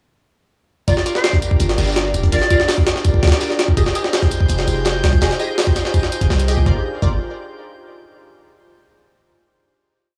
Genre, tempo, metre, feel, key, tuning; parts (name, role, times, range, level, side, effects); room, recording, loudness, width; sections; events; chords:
drum and bass, jungle; 166 BPM; 4/4; straight; G phrygian; A4 = 440 Hz
bright silver concert flute; melody; 0.9-2.7 s; C5 to D5; -26 LUFS; equal; vintage 12-bit sampler grit, dub echo
airy breathy pad; sustained chords; 0.9-6.8 s; D4 to D5; -27 LUFS; equal; chorus, vintage 12-bit sampler grit
filtered dub chord stab; stabs; 0.9-7.2 s; F4 to Eb5; -28 LUFS; equal; phaser, ensemble chorus, dub echo
long sustained 808-style bass; bass; 0.9-7.2 s; D1 to D2; -20 LUFS; equal
crunchy breakbeat drum kit; drums; 0.9-6.6 s; hi-hat, snare drum, tambourine; -32 LUFS; equal; high-pass filter on hats, high-pass filter on snare, high-pass filter on perc, high-pass filter on room
jungle sampler-style drum kit; drums; 0.9-7.1 s; hi-hat, kick drum, snare drum; -19 LUFS; equal
drifting glass-harmonics texture; texture; 4.1-6.7 s; G6; -34 LUFS; equal; chorus, built-in reverb
small room reverb; dry, gritty hardware recording, transformer saturation, cassette tape; -17 LUFS; mono
0.9-6.7 drop; 6.7-8.1 final chord
drop 0.9-6.7
0.9 Gm7; 3.8 Fm9; 6.7 Gm7